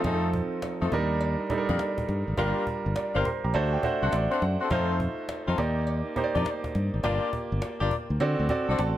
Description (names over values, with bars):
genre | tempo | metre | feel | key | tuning
R&B, new jack swing | 103 BPM | 4/4 | swing 64% on 16ths | G minor | A4 = 443 Hz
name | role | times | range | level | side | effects
clear baby grand piano | accompaniment | 0.0-9.0 s | F3 to C6 | -28 LUFS | right 3 dB | none
mellow horn section | stabs | 0.0-8.8 s | A3 to D5 | -32 LUFS | left 5 dB | ping-pong delay
fingered electric bass | bass | 0.0-8.9 s | G1 to D3 | -27 LUFS | equal | none
cajon | drums | 0.0-9.0 s | none | -37 LUFS | equal | none
cowbell | percussion | 0.0-9.0 s | none | -43 LUFS | left 3 dB | none
room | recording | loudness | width
light reverb, studio reverb | none | -25 LUFS | side -13 dB against mid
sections
0.0-9.0 A section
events
grand piano fill 3.0-4.7, 8.5-9.0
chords
0.0 F7; 0.9 Ebmaj7; 2.4 Gm7; 3.5 D7; 4.7 F7; 5.6 Ebmaj7; 7.0 Gm7; 8.2 D7